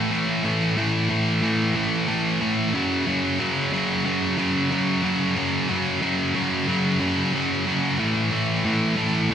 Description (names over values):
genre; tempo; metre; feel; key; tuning
metal; 92 BPM; 4/4; straight; unclear; A4 = 441 Hz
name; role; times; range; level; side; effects
scooped high-gain guitar; solo; 0.0-9.3 s; F#2 to A3; -20 LUFS; equal; distortion
room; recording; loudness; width
moderate lush hall reverb, RT60 2.6 s; rough home demo mix; -20 LUFS; side -8 dB against mid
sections
0.0-9.3 A section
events
none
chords
0.0 A5; 2.7 F#5; 8.0 A5